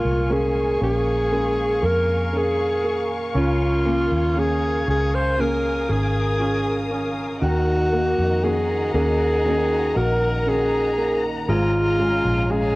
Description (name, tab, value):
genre	pop ballad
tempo	59 BPM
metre	4/4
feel	straight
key	Db major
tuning	A4 = 440 Hz
part	breathy alto saxophone	melody	0.0-12.8 s	F4 to C5	-22 LUFS	equal	cassette tape
part	warm grand piano	accompaniment	0.0-12.8 s	Eb3 to Db4	-27 LUFS	right 2 dB	cassette tape
part	warm studio string section	sustained chords	0.0-12.8 s	Db4 to Eb6	-29 LUFS	left 2 dB	cassette tape
part	nylon-string guitar	arpeggios	0.0-12.8 s	Ab2 to Ab4	-29 LUFS	left 1 dB	cassette tape
part	vintage muted fingered electric bass	bass	0.0-12.8 s	Ab1 to F2	-24 LUFS	equal	none
room	light reverb, small room ambience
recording	home recording on cassette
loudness	-18 LUFS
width	side -20 dB against mid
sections	0.0-12.8 A section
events	none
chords	0.0 Bbm7; 3.4 Db6; 7.4 Ebm7; 11.5 Db/Ab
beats	0.30 1.32 2.33 | 3.35 4.37 5.39 6.40 | 7.42 8.44 9.45 10.47 | 11.49 12.50